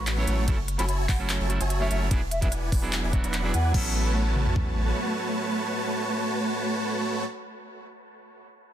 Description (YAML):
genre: future bass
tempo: 147 BPM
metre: 4/4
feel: half-time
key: A major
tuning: A4 = 440 Hz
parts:
  - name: mellow baroque flute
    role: melody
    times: 0.0-3.7 s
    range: E5 to B5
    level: -35 LUFS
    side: equal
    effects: sidechain pumping, dub echo
  - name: dense compressed supersaw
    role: riff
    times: 0.0-7.2 s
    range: A3 to B5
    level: -29 LUFS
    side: right 1 dB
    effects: sidechain pumping, dub echo
  - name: saturated sub bass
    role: bass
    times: 0.0-4.9 s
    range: E1 to E2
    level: -27 LUFS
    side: equal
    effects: sidechain pumping
  - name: trap drum kit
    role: drums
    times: 0.1-3.8 s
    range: crash cymbal, handclaps, hi-hat, ride cymbal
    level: -32 LUFS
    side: equal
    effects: none
  - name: clean electric guitar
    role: accompaniment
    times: 0.2-7.3 s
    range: F#3 to C#5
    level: -34 LUFS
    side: right 3 dB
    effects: sidechain pumping, dub echo
  - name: trap drum kit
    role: drums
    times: 0.5-4.7 s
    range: kick drum, toms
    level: -26 LUFS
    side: equal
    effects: none
room: digital ambience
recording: dense, heavily limited modern master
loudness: -24 LUFS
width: side -11 dB against mid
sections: 0.0-3.7 A section; 3.7-7.0 B section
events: drop 0.0-3.7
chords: 0.5 F#m7; 2.1 E9; 3.7 A69